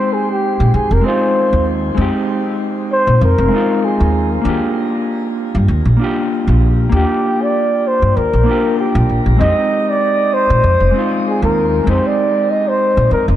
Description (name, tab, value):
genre	sunset chillout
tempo	97 BPM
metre	4/4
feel	swing 55% on 16ths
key	unclear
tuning	A4 = 439 Hz
part	breathy flugelhorn	melody	0.0-13.3 s	G4 to Eb5	-16 LUFS	equal	shimmer reverb, dub echo
part	mellow electric guitar	accompaniment	0.0-13.4 s	Ab3 to G4	-18 LUFS	equal	auto-pan, shimmer reverb, dub echo
part	upright bass	bass	0.6-13.4 s	F1 to Bb2	-14 LUFS	equal	none
room	moderate plate reverb, RT60 3.0 s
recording	echo-heavy mix, nothing above 11.0 kHz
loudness	-12 LUFS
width	side -12 dB against mid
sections	0.0-13.4 A section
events	none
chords	0.0 Fm7; 4.5 Ebmaj7 (rootless); 9.4 Fm7